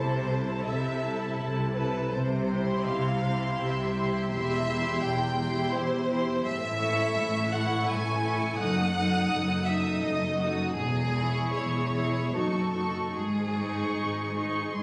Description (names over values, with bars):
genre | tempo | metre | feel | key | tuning
classical, slow romantic movement for string orchestra | 72-87 BPM | 3/4 | rubato | unclear | A4 = 440 Hz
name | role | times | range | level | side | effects
dark studio violin section | melody | 0.0-14.8 s | A5 to D#6 | -38 LUFS | equal | none
rich chamber violin section | second line | 0.0-14.7 s | F#4 to G#5 | -34 LUFS | equal | none
rich studio viola section | accompaniment | 0.0-14.8 s | D#4 to A4 | -36 LUFS | equal | none
warm chamber cello section | bass | 0.0-14.8 s | E2 to C3 | -33 LUFS | equal | none
warm studio double bass section | bass | 0.0-14.8 s | E1 to C2 | -36 LUFS | equal | none
room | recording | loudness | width
moderate concert hall reverb, RT60 1.8 s | recorded on a phone in the room, studio reverb, compression | -28 LUFS | mono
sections
0.0-14.8 A section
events
none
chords
0.0 Am/C; 2.1 C; 4.3 C/E; 6.5 A; 8.6 D#dim/F#; 10.8 C#m/E; 12.4 D#m7b5/F#; 13.2 G#sus4